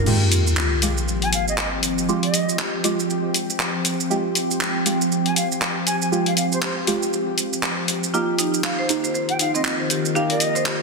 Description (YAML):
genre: afro house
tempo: 119 BPM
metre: 4/4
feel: swing 58% on 16ths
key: F minor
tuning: A4 = 440 Hz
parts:
  - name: ethereal airy pad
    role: sustained chords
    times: 0.0-10.8 s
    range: Eb3 to G4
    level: -24 LUFS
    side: right 1 dB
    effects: ensemble chorus, built-in reverb, phaser
  - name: marimba with hard mallets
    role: arpeggios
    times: 0.0, 8.1-10.8 s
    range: C4 to F5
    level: -26 LUFS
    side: right 1 dB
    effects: tape echo
  - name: deep mellow chord stab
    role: stabs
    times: 0.0-10.8 s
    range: Ab3 to G4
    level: -27 LUFS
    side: right 2 dB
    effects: chorus, phaser, tape echo
  - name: deep house drum kit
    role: drums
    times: 0.1-10.8 s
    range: crash cymbal, handclaps, hi-hat, shaker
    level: -23 LUFS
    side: equal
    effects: overdrive, soft clipping on snare
  - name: sub drop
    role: sound effects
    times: 0.1-2.1 s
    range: none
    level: -22 LUFS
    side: equal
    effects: none
  - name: concert flute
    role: melody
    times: 1.2-10.7 s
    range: C5 to Ab5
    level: -27 LUFS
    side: equal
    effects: tape echo
room: moderate plate reverb, RT60 2.3 s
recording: dense, heavily limited modern master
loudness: -19 LUFS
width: side -3 dB against mid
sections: 0.1-10.8 A section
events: impact 0.1-2.1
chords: 0.1 Fmadd9; 8.1 Eb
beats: | 0.07 0.57 1.08 1.58 | 2.09 2.59 3.09 3.60 | 4.10 4.61 5.11 5.62 | 6.12 6.62 7.13 7.63 | 8.14 8.64 9.14 9.65 | 10.15 10.66